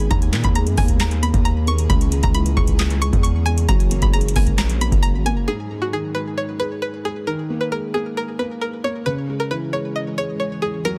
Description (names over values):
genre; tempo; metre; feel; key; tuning
hip hop, trap; 134 BPM; 4/4; half-time; G# minor; A4 = 440 Hz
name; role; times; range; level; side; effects
string-like resonator pluck; melody; 0.0-11.0 s; F#4 to D#6; -28 LUFS; equal; chorus, delay
felt-muted upright piano; accompaniment; 0.0-11.0 s; G#2 to A#3; -28 LUFS; equal; none
granular cloud pad; sustained chords; 0.0-5.5, 9.8-11.0 s; D#3 to G#4; -34 LUFS; equal; built-in reverb
distorted 808-style bass; bass; 0.0-5.5 s; F#1 to A#2; -22 LUFS; equal; distortion
booming analog drum machine; drums; 0.1-5.4 s; handclaps, hi-hat, kick drum, snare drum; -21 LUFS; equal; none
room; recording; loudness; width
digital ambience; dense, heavily limited modern master; -20 LUFS; mono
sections
0.0-5.5 A section; 5.5-11.0 B section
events
none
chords
0.1 D#sus4; 1.9 C#m; 3.7 F#add9; 5.5 G#5; 7.3 D#sus4; 9.1 C#m